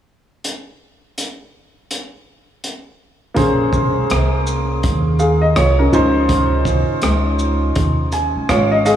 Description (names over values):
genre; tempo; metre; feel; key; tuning
hip hop, jazz-hop; 82 BPM; 4/4; swing 62% on 16ths; Bb minor; A4 = 445 Hz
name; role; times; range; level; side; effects
crunchy breakbeat drum kit; drums; 0.4-9.0 s; hi-hat, kick drum, rim click, shaker; -22 LUFS; equal; none
warm upright piano; accompaniment; 3.3-9.0 s; F3 to Ab5; -16 LUFS; right 1 dB; none
upright bass; bass; 3.4-9.0 s; Ab1 to Eb2; -18 LUFS; equal; none
room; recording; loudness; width
moderate cathedral reverb, RT60 5.2 s; dreamy mix soaked in reverb, small room ambience; -14 LUFS; side -10 dB against mid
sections
0.4-3.4 A section; 3.4-9.0 B section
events
upright piano fill 7.8-9.0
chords
0.4 N.C.; 3.4 Bbm9; 5.9 Dbmaj9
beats
| 0.44 1.18 1.91 2.64 | 3.37 4.10 4.83 5.57 | 6.30 7.03 7.76 8.49